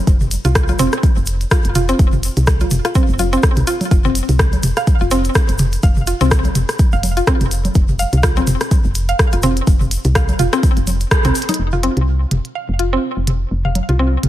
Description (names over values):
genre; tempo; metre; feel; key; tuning
minimal techno; 125 BPM; 4/4; swing 57% on 16ths; unclear; A4 = 442 Hz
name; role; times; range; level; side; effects
woody FM bass; bass; 0.1-14.3 s; F1 to C2; -18 LUFS; equal; sidechain pumping
electronic kick drum; drums; 0.1-11.2 s; none; -15 LUFS; equal; overdrive
minimal click drum kit; drums; 0.1-14.3 s; hi-hat, rim click; -22 LUFS; equal; overdrive
tube shaker; percussion; 0.1-11.6 s; none; -30 LUFS; left 3 dB; tape echo
electronic toms and congas; percussion; 0.2-14.3 s; none; -21 LUFS; equal; overdrive, tape echo
mallet-like synth pluck; riff; 0.4-14.0 s; C4 to F5; -21 LUFS; equal; chorus, sidechain pumping, tape echo
room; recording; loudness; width
digital ambience; echo-heavy mix; -13 LUFS; side -14 dB against mid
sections
0.0-11.6 A section; 11.6-14.3 B section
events
band accent 11.1; drum fill 11.4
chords
0.0 F5